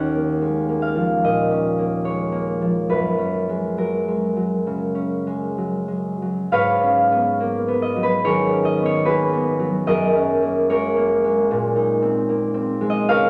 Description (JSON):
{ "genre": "classical, solo harp piece", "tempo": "60-77 BPM", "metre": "4/4", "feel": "rubato", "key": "G# dorian", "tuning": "A4 = 440 Hz", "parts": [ { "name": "concert harp", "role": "solo", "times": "0.0-13.3 s", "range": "C#2 to F#5", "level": "-20 LUFS", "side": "equal", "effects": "none" } ], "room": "wet recital hall reverb, RT60 1.5 s", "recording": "none", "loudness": "-21 LUFS", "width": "mono", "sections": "0.0-6.5 A section; 6.5-13.3 A section", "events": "none", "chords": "0.0 D#m9; 2.9 F#add9; 6.5 G#m11; 9.9 F#add9; 11.5 A#m11" }